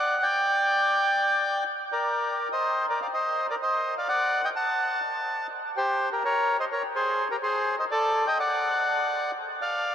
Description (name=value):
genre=tango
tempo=124 BPM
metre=4/4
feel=rubato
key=G minor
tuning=A4 = 443 Hz
part: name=bandoneon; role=solo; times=0.0-9.9 s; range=G4 to A5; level=-23 LUFS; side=equal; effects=none
room=wet huge ambient reverb, RT60 8.7 s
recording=in a vast, echoing space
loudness=-23 LUFS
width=side -9 dB against mid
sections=0.0-2.2 A section; 2.2-9.9 B section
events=none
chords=0.2 Gm; 2.2 Bbadd9; 4.1 D; 5.0 N.C.; 6.0 Gdim; 6.9 Ab; 7.9 D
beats=| 0.21 0.69 1.18 1.67 | 2.15 2.64 3.12 3.60 | 4.08 4.55 5.03 5.51 | 5.99 6.46 6.94 7.42 | 7.90 8.38 8.86 9.34 | 9.83